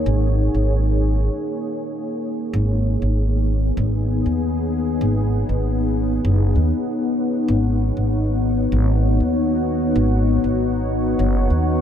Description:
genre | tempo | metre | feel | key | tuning
ambient dub | 97 BPM | 4/4 | swing 56% on 16ths | G# minor | A4 = 440 Hz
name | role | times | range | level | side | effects
deep dark ambient pad | sustained chords | 0.0-11.8 s | A#3 to F#5 | -21 LUFS | left 2 dB | chorus, built-in reverb
upright bass | bass | 0.0-11.8 s | F#1 to D#2 | -19 LUFS | equal | none
room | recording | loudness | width
moderate huge ambient reverb, RT60 7.4 s | dreamy mix soaked in reverb | -18 LUFS | side -9 dB against mid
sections
0.0-2.5 A section; 2.5-11.8 B section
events
break 1.3-2.5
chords
0.0 F#; 2.5 G#m7

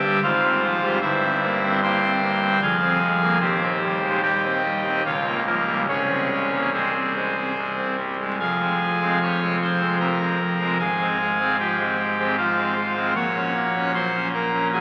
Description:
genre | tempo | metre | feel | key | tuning
classical, chorale-style piece for pipe organ | 71-77 BPM | 3/4 | rubato | F minor | A4 = 441 Hz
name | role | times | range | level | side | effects
pipe organ, trumpet | solo | 0.0-14.8 s | C1 to Db6 | -22 LUFS | equal | none
room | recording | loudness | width
wet church reverb, RT60 3.8 s | very old 78 rpm record, vinyl crackle | -22 LUFS | mono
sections
0.0-8.4 A section; 8.4-14.8 B section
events
none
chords
0.2 Fm/Ab; 1.0 C7/G; 2.6 Fm; 3.4 Cm/Eb; 5.0 Bbm/Db; 5.9 Bbm9/C (rootless); 7.6 C5; 8.4 Fm; 10.8 Fm/Ab; 13.2 Gb/Bb

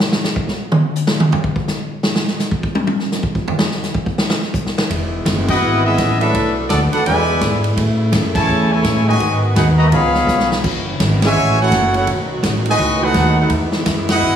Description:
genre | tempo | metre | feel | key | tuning
jazz, big band swing | 167 BPM | 4/4 | swing 63% on 8ths | E major | A4 = 441 Hz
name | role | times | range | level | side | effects
swinging big-band drum kit | drums | 0.0-14.2 s | crash cymbal, hi-hat, kick drum, ride cymbal, snare drum, toms | -19 LUFS | equal | none
mellow saxophone section | sustained chords | 4.9-14.4 s | C#3 to F#4 | -24 LUFS | left 1 dB | none
upright bass | bass | 4.9-14.4 s | E1 to A2 | -18 LUFS | equal | none
bright trumpet section | melody | 5.5-14.4 s | B3 to B5 | -17 LUFS | left 1 dB | none
warm trombone section | second line | 5.5-14.4 s | A2 to F#4 | -21 LUFS | right 2 dB | none
room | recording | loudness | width
moderate recital hall reverb, RT60 1.4 s | heavily compressed radio sound, studio reverb | -14 LUFS | side -9 dB against mid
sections
0.0-4.9 A section; 4.9-14.4 B section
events
drum solo 0.0-4.9; band accent 5.4, 8.3, 11.2, 14.0; drum fill 10.3-10.6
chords
0.0 N.C.; 4.9 Emaj7; 6.3 Bm7; 7.1 E7; 7.8 Amaj7; 9.2 G#m7; 9.9 C#7; 10.6 F#m7; 12.1 B7; 13.5 Emaj7

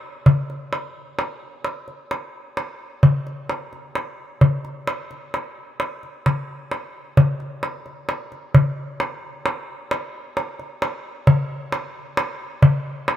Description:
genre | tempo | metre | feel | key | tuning
greek folk | 131 BPM (eighths) | 9/8 | straight | none | none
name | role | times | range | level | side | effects
darbuka | percussion | 0.3-13.2 s | none | -18 LUFS | equal | none
room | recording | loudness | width
light reverb | none | -21 LUFS | side -12 dB against mid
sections
0.0-8.5 A section; 8.5-13.2 B section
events
none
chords
none

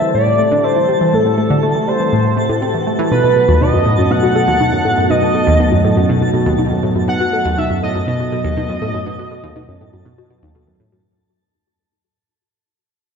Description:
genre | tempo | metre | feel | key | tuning
ambient, sequencer-driven space music | 121 BPM | 4/4 | straight | unclear | A4 = 439 Hz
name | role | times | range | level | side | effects
pulse-width lead | melody | 0.0-10.5 s | A4 to F#5 | -17 LUFS | equal | chorus, tape echo
lush unison pad | sustained chords | 0.0-11.0 s | B2 to F#4 | -20 LUFS | right 1 dB | chorus
analog pluck | riff | 0.0-11.0 s | D#2 to C4 | -17 LUFS | equal | chorus, phaser, tape echo
twinkling granular texture | texture | 0.0-11.1 s | A4 to A5 | -26 LUFS | equal | built-in reverb
warbly dusty pluck | arpeggios | 3.1-11.0 s | D#4 to B4 | -23 LUFS | left 2 dB | chorus, auto-pan, tape echo
room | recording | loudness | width
wet concert hall reverb, RT60 2.0 s | dark, warm production | -12 LUFS | side -6 dB against mid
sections
0.0-11.1 A section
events
fade-in on analog synth pad 0.0-11.1; fade-in on synth texture 0.0-11.1; fade-out 5.8-11.1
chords
0.0 Am7; 3.1 B7

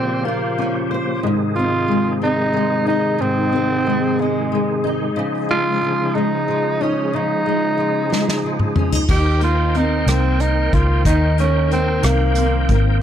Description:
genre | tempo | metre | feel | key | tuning
six-eight pop ballad | 61 BPM (dotted quarters) | 6/8 | straight | unclear | A4 = 438 Hz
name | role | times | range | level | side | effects
growling tenor saxophone | melody | 0.0-12.8 s | Ab3 to G4 | -21 LUFS | right 2 dB | none
fingerpicked steel-string acoustic guitar | accompaniment | 0.0-13.0 s | Ab2 to C5 | -21 LUFS | left 1 dB | double-tracked left and right
bright tonewheel organ | sustained chords | 0.0-13.0 s | C3 to G5 | -24 LUFS | left 1 dB | chorus vibrato, fast rotary speaker
unplugged drum kit | drums | 8.1-12.8 s | crash cymbal, hi-hat, kick drum, rim click, snare drum, toms | -20 LUFS | equal | none
vintage muted fingered electric bass | bass | 9.1-13.0 s | Ab1 to Eb2 | -17 LUFS | equal | none
room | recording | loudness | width
small room ambience | dry, close 1970s-style studio recording | -16 LUFS | side -9 dB against mid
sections
0.0-9.1 A section; 9.1-13.0 B section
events
drum fill 8.1-9.1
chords
0.0 Bbmadd9; 1.2 Ab; 5.2 Dbadd9; 9.1 Eb6

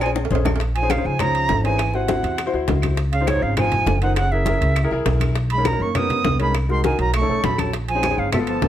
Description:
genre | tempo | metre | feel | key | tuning
Afro-Cuban jazz | 202 BPM | 4/4 | straight | Bb minor | A4 = 439 Hz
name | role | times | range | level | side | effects
bright silver concert flute | melody | 0.0-8.7 s | Db5 to D#6 | -23 LUFS | right 3 dB | none
warm grand piano | accompaniment | 0.0-8.6 s | B3 to C5 | -26 LUFS | left 4 dB | none
upright bass | bass | 0.0-8.7 s | Gb1 to F#2 | -22 LUFS | equal | none
agogo bells and timbales | percussion | 0.0-8.7 s | none | -30 LUFS | right 7 dB | none
claves | percussion | 0.0-8.5 s | none | -35 LUFS | left 1 dB | none
congas | percussion | 0.0-8.7 s | none | -27 LUFS | left 2 dB | none
cowbell and bongos | percussion | 0.0-8.7 s | none | -30 LUFS | left 7 dB | none
breathy trombone | second line | 0.8-8.7 s | Ab2 to B3 | -28 LUFS | right 6 dB | none
room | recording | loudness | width
light reverb | none | -18 LUFS | side -11 dB against mid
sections
0.6-8.7 A section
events
drum fill 0.0-0.6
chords
0.0 Bbm7; 0.6 Bbm11; 1.8 Abaug7; 3.0 Dbmaj9; 4.2 Gb9; 5.4 Bmaj7; 6.5 Cm7b5; 7.1 B9; 7.7 Bbm11

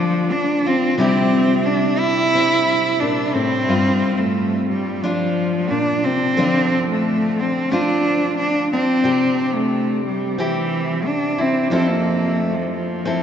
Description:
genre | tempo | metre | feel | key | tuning
acoustic folk-pop ballad | 90 BPM | 4/4 | straight | unclear | A4 = 439 Hz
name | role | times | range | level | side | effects
warm cello | melody | 0.0-13.2 s | E3 to E4 | -18 LUFS | equal | none
fingerpicked steel-string acoustic guitar | accompaniment | 0.0-13.2 s | F2 to A4 | -21 LUFS | equal | none
room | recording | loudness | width
wet cathedral reverb, RT60 5.9 s | recorded in a church or concert hall, nothing above 7.8 kHz | -16 LUFS | side -8 dB against mid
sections
0.0-13.2 A section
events
none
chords
0.0 Dm; 1.0 C; 3.7 Gm7; 6.4 Dm7; 9.1 C; 11.7 Fmaj7

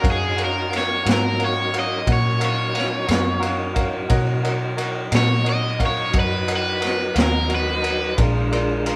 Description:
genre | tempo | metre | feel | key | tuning
slow blues | 59 BPM (dotted quarters) | 12/8 | straight | Eb minor | A4 = 440 Hz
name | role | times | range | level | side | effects
cranked stack guitar | melody | 0.0-8.2 s | Ab4 to Eb5 | -26 LUFS | equal | overdrive
bright upright piano | accompaniment | 0.0-9.0 s | F4 to Bb5 | -30 LUFS | equal | none
vintage muted fingered electric bass | bass | 0.0-9.0 s | Bb1 to B2 | -27 LUFS | equal | none
crunchy breakbeat drum kit | drums | 0.0-9.0 s | kick drum, ride cymbal, snare drum | -26 LUFS | equal | none
tonewheel organ | sustained chords | 0.1-9.0 s | Gb3 to A#5 | -32 LUFS | equal | slow rotary speaker, overdrive, chorus vibrato
room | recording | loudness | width
moderate small room ambience, RT60 0.5 s | band playing live in one room | -21 LUFS | mono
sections
0.0-9.0 A section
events
overdriven electric guitar solo 0.0-9.0; upright piano fill 3.1-4.1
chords
0.0 Ebm7; 4.1 Bmaj7; 8.2 Bb7

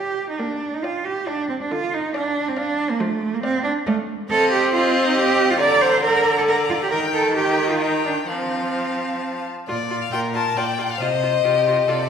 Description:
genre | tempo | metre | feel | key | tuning
quick classical-period movement for string quartet | 137 BPM | 3/4 | rubato | Bb major from 4.3 s | A4 = 440 Hz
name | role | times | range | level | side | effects
clear violin | melody | 0.0-12.1 s | D5 to Bb5 | -25 LUFS | left 8 dB | none
rich violin | second line | 0.0-12.1 s | G4 to G5 | -28 LUFS | left 3 dB | none
rich cello | bass | 0.0-12.1 s | Bb2 to D5 | -21 LUFS | right 3 dB | none
clear viola | accompaniment | 0.4-12.0 s | D3 to F4 | -24 LUFS | equal | none
room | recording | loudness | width
wet recital hall reverb, RT60 1.6 s | heard from further back in the room | -18 LUFS | side -7 dB against mid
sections
0.0-9.7 A section; 9.7-12.1 B section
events
none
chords
0.4 Gm/Bb; 1.7 Dm; 3.0 Dm/F; 4.3 F7/C; 5.6 Bb/D; 6.9 Eb; 8.3 F; 9.7 Bb; 11.0 F7(no3)/C

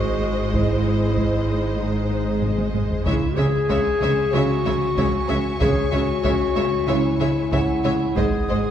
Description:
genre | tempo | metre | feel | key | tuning
cinematic, suspense film score | 94 BPM | 4/4 | straight | C# harmonic minor | A4 = 440 Hz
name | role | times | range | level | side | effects
rich symphonic violin section | melody | 0.0-8.6 s | D#5 to E5 | -32 LUFS | left 1 dB | none
mellow clarinet | second line | 0.0-8.7 s | D#4 to G#4 | -23 LUFS | left 3 dB | none
warm symphonic violin section | second line | 0.0-8.6 s | B#4 to C#5 | -31 LUFS | left 1 dB | none
rich symphonic viola section | accompaniment | 0.0-8.6 s | G#3 | -29 LUFS | equal | none
clear studio cello section | riff | 0.0-8.7 s | G#2 to C#4 | -28 LUFS | right 2 dB | none
clear chamber double bass section | bass | 0.0-8.6 s | G#1 to C#2 | -30 LUFS | right 2 dB | none
rich studio cello section | bass | 0.0-8.6 s | G#2 to C#3 | -27 LUFS | right 2 dB | none
punchy sub bass | drone | 0.0-8.7 s | G#1 to C#2 | -30 LUFS | equal | none
vibraphone with medium mallets | texture | 0.0-8.7 s | E4 to F#5 | -34 LUFS | equal | none
solo taiko drums | drums | 0.5-8.7 s | none | -28 LUFS | equal | none
rich chamber violin section | texture | 3.1-8.7 s | G#5 to D#6 | -36 LUFS | left 2 dB | none
room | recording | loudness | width
wet scoring stage reverb, RT60 1.6 s | heard from further back in the room | -18 LUFS | side -9 dB against mid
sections
0.0-8.7 A section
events
drum fill 2.4-3.1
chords
0.0 G#; 3.1 C#m; 8.2 G#5

